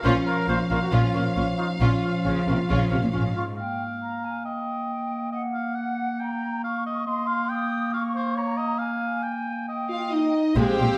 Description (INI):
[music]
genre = cinematic, heroic adventure film score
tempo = 137 BPM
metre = 4/4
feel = straight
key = unclear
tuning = A4 = 441 Hz
[part]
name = clear oboe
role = second line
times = 0.0-10.9 s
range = C5 to G5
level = -34 LUFS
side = equal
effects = none
[part]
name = rich symphonic violin section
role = second line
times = 0.0-3.2, 10.6-11.0 s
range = Bb3 to F5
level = -36 LUFS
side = equal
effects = none
[part]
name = small flute group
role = second line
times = 0.0-10.8 s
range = F5 to Eb6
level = -35 LUFS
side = equal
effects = none
[part]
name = rich studio viola section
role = accompaniment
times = 0.0-3.2, 10.6-11.0 s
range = Ab3 to G4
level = -33 LUFS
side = equal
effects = none
[part]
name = dark French horn section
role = sustained chords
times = 0.0-3.3, 9.9-11.0 s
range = F3 to G4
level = -28 LUFS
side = equal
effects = none
[part]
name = dark trumpet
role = stabs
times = 0.0-3.3, 9.9-11.0 s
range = Eb4 to C5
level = -34 LUFS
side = equal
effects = none
[part]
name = clear symphonic double bass section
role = bass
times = 0.0-3.2, 10.6-10.9 s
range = Bb1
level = -28 LUFS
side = equal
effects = none
[part]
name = rich symphonic cello section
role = bass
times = 0.0-3.6, 10.6-10.9 s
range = Ab2 to Db3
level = -31 LUFS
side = equal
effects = none
[part]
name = warm symphonic violin section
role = melody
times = 0.1-3.3, 9.9-11.0 s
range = Eb5 to G5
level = -36 LUFS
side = equal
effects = none
[part]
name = warm clarinet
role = second line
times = 0.1-11.0 s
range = Bb3 to F4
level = -34 LUFS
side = equal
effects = none
[sound]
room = wet recital hall reverb, RT60 1.3 s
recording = none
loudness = -26 LUFS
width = mono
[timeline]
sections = 0.0-3.6 A section; 3.6-10.6 B section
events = none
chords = 0.0 Bbm; 3.6 Fmadd9/Bb; 4.5 Eb/Bb; 5.3 Ebmadd9/Bb (rootless); 6.2 Eb/Bb; 7.1 Cm/Bb; 7.9 Bbm; 8.8 Fmadd9/Bb; 9.7 Eb/Bb